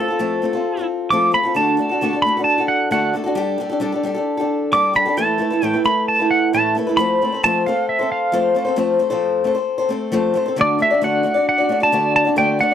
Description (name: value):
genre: rock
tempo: 133 BPM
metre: 4/4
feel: straight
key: D mixolydian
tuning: A4 = 439 Hz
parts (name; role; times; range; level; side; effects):
- pedal steel guitar; melody; 0.0-12.7 s; A4 to D6; -17 LUFS; right 2 dB; none
- picked old ladder-braced acoustic guitar; accompaniment; 0.0-12.7 s; A2 to D5; -18 LUFS; left 2 dB; none
room: little or no reverb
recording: dry, close 1970s-style studio recording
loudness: -16 LUFS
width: side -9 dB against mid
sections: 0.0-8.8 A section; 8.8-10.6 B section; 10.6-12.7 C section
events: pedal steel guitar solo 0.0-8.8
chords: 0.0 F; 1.6 D; 3.4 Gsus2; 5.2 Asus2; 7.0 F; 10.6 D